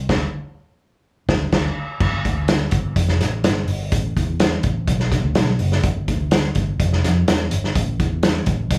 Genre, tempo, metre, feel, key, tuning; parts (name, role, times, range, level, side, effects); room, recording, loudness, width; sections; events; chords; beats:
uptempo 1960s-style soul; 125 BPM; 4/4; straight; G major; A4 = 440 Hz
vintage muted fingered electric bass; bass; 0.0-8.8 s; F1 to F2; -23 LUFS; equal
vintage drum kit; drums; 0.1-8.8 s; crash cymbal, hi-hat, kick drum, snare drum; -22 LUFS; equal
light reverb; small room ambience; -20 LUFS; mono
0.0-2.0 A section; 2.0-8.8 B section
band accent 0.1-2.0
| 0.09 0.57 1.05 1.53 | 2.01 2.49 2.97 3.45 | 3.92 4.40 4.88 5.36 | 5.84 6.32 6.80 7.27 | 7.75 8.23 8.71